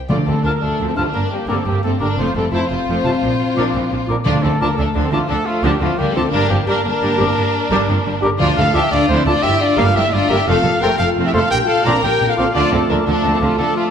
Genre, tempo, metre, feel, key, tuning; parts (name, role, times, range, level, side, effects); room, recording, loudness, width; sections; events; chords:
cinematic, heroic adventure film score; 116 BPM (dotted quarters); 12/8; straight; D minor; A4 = 440 Hz
dark symphonic violin section; second line; 0.0-13.9 s; F4 to Bb5; -26 LUFS; left 3 dB
rich symphonic violin section; melody; 0.1-13.9 s; A3 to D5; -22 LUFS; left 4 dB
clear symphonic viola section; accompaniment; 0.1-13.7 s; C3 to D4; -25 LUFS; right 2 dB
mellow French horn section; sustained chords; 0.1-13.9 s; F3 to Bb4; -24 LUFS; left 4 dB
mellow trumpet; stabs; 0.1-13.8 s; F4 to Bb5; -22 LUFS; right 1 dB
clear symphonic double bass section; bass; 0.1-13.6 s; F1 to D2; -23 LUFS; right 3 dB
rich symphonic cello section; bass; 0.1-13.7 s; D2 to D3; -24 LUFS; right 2 dB
timpani; percussion; 0.1-0.6, 4.3-4.7, 8.4-8.9 s; D3; -22 LUFS; equal
dark clarinet; second line; 0.4-13.9 s; D4 to A4; -27 LUFS; left 2 dB
mellow concert flute; second line; 0.5-13.9 s; C6 to F6; -28 LUFS; left 6 dB
mellow cor anglais; second line; 0.5-13.9 s; Bb4 to A5; -29 LUFS; right 1 dB
clear trombone section; sustained chords; 0.5-13.9 s; C3 to D4; -28 LUFS; right 4 dB
wet recital hall reverb, RT60 1.5 s; -14 LUFS; side -8 dB against mid
0.1-13.9 A section
0.1 Dm; 1.1 Gm; 2.2 F; 3.2 Bbadd9; 4.3 Dm; 6.3 Gm; 8.4 Dm; 9.4 Gm; 10.5 F; 11.5 Bbadd9; 12.6 Dm